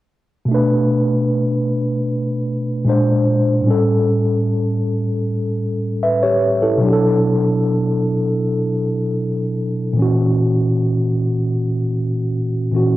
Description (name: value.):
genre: R&B.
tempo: 76 BPM.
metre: 4/4.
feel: straight.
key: B minor.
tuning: A4 = 441 Hz.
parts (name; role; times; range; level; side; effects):
mellow tine electric piano; accompaniment; 0.5-13.0 s; A2 to E5; -15 LUFS; equal; medium stereo tremolo, cassette tape.
room: light reverb, digital ambience.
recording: home recording on cassette.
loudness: -16 LUFS.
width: side -16 dB against mid.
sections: 0.5-13.0 A section.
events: none.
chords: 0.5 Bm7; 2.9 A#9; 3.7 A7; 6.8 Bm7; 10.0 F#7/A#.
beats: | 0.49 1.28 2.07 2.86 | 3.65 4.44 5.23 6.02 | 6.81 7.60 8.39 9.18 | 9.97 10.76 11.55 12.34.